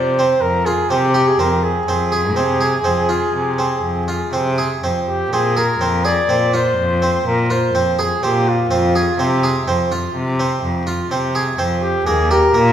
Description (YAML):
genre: contemporary instrumental, chamber music in an uneven meter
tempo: 124 BPM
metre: 7/4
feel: straight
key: F dorian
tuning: A4 = 441 Hz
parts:
  - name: warm flugelhorn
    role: melody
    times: 0.0-12.7 s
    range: F4 to D5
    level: -18 LUFS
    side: equal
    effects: none
  - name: harpsichord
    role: arpeggios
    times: 0.0-12.7 s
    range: Bb3 to Ab4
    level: -20 LUFS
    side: right 3 dB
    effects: none
  - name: clear cello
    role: bass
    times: 0.0-12.7 s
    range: Eb2 to C3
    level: -20 LUFS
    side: left 1 dB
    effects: none
room: wet recital hall reverb, RT60 1.6 s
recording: minimal, uncompressed stereo recording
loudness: -15 LUFS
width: side -10 dB against mid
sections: 0.0-5.3 A section; 5.3-12.7 B section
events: none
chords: 0.0 Fmadd9; 1.9 Fm; 5.3 Bb7sus2; 8.7 Fm; 12.1 Eb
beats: 0.42 0.91 1.40 | 1.88 2.37 2.85 3.34 3.84 4.33 4.83 | 5.33 5.82 6.30 6.79 7.27 7.75 8.24 | 8.72 9.20 9.68 10.16 10.64 11.12 11.59 | 12.07 12.54